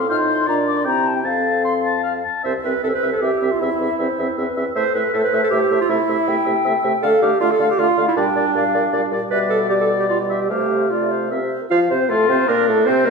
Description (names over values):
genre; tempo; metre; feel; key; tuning
quick classical-period movement for wind quintet; 156 BPM; 3/4; rubato; C major, F major from 7.0 s; A4 = 439 Hz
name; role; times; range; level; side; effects
mellow hollow silver concert flute; melody; 0.0-13.1 s; A4 to F6; -23 LUFS; left 7 dB; none
warm oboe; second line; 0.0-13.1 s; C4 to C6; -24 LUFS; left 3 dB; none
mellow French horn; accompaniment; 0.0-13.1 s; G3 to F4; -25 LUFS; right 1 dB; none
warm clarinet; accompaniment; 0.0-13.1 s; D4 to F5; -20 LUFS; right 4 dB; none
mellow bassoon; bass; 0.0-13.1 s; C2 to F3; -25 LUFS; right 2 dB; none
room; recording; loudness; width
wet recital hall reverb, RT60 1.4 s; recorded in a church or concert hall; -16 LUFS; side -4 dB against mid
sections
0.0-2.4 A section; 2.4-11.7 B section; 11.7-13.1 A section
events
none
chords
0.1 F7/A; 0.5 Bb; 0.9 C; 1.2 F; 2.4 C; 3.6 C/E; 4.8 Am; 5.9 Am/C; 7.0 Dm; 8.2 Gm/Bb; 9.3 G/B; 10.5 F/C; 11.3 C; 11.7 F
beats
| 0.09 0.47 0.86 | 1.25 1.65 2.05 | 2.45 2.84 3.22 | 3.61 3.99 4.37 | 4.76 5.14 5.52 | 5.89 6.27 6.65 | 7.03 7.41 7.78 | 8.16 8.55 8.93 | 9.31 9.70 10.09 | 10.50 10.90 11.30 | 11.70 12.10 12.48 | 12.86